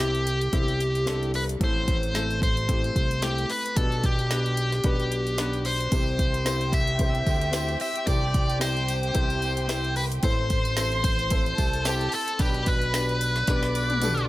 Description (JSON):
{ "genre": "piano-driven pop", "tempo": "111 BPM", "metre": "4/4", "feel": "swing 56% on 16ths", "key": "C major", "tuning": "A4 = 439 Hz", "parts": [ { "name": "smooth overdriven lead guitar", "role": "melody", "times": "0.0-14.3 s", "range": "G4 to E5", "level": "-28 LUFS", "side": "equal", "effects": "none" }, { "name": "clear upright piano", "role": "accompaniment", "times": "0.0-14.3 s", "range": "A2 to D5", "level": "-32 LUFS", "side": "left 3 dB", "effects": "none" }, { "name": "fat analog bass", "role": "bass", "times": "0.0-14.3 s", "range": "A1 to D2", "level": "-28 LUFS", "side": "equal", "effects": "none" }, { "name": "deep house drum kit", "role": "drums", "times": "0.0-14.3 s", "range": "hi-hat, kick drum, snare drum, toms", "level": "-27 LUFS", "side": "equal", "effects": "none" }, { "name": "warm studio violin section", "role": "second line", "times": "5.9-14.3 s", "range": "G4 to D6", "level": "-34 LUFS", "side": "right 2 dB", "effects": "none" }, { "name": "tambourine", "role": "percussion", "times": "5.9-14.2 s", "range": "none", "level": "-41 LUFS", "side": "right 5 dB", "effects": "none" } ], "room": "digital ambience", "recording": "none", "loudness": "-22 LUFS", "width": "side -17 dB against mid", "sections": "0.0-14.3 A section", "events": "drum fill 13.5-14.3", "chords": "0.0 C; 1.6 Am; 3.8 G/B; 5.9 C; 10.2 Am; 12.4 G/B", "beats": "0.53 1.07 | 1.61 2.15 2.69 3.22 | 3.76 4.30 4.84 5.38 | 5.92 6.46 7.00 7.54 | 8.08 8.62 9.16 9.70 | 10.24 10.78 11.32 11.86 | 12.40 12.94 13.48 14.02" }